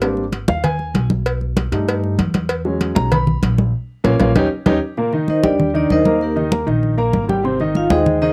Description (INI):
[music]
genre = Afro-Cuban jazz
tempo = 194 BPM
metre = 4/4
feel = straight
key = G# minor, C minor from 5.0 s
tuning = A4 = 440 Hz
[part]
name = warm baby grand piano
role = accompaniment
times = 0.0-8.3 s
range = Bb2 to B5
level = -22 LUFS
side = equal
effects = cassette tape
[part]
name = upright bass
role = bass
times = 0.0-8.3 s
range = G#1 to G2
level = -24 LUFS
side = equal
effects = none
[part]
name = congas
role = percussion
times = 0.0-8.3 s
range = none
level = -22 LUFS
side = equal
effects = none
[part]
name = cowbell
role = percussion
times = 0.0-4.7 s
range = none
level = -27 LUFS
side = equal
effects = none
[part]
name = vibraphone with medium hard mallets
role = melody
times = 5.3-8.3 s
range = Bb3 to F5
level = -19 LUFS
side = equal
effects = cassette tape
[sound]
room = moderate small room reverb, RT60 0.5 s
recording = home recording on cassette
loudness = -18 LUFS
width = mono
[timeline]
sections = 0.0-5.0 A section; 5.0-8.3 A section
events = grand piano solo 0.0-5.0; band accent 3.7-5.0; drum fill 4.4-5.0; vibraphone solo 5.0-8.3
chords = 0.0 G#maj9#11; 1.3 Baug7; 2.5 E69; 3.7 A#m; 4.4 D#7; 5.0 Cm7; 6.2 Eb; 7.4 Abmaj7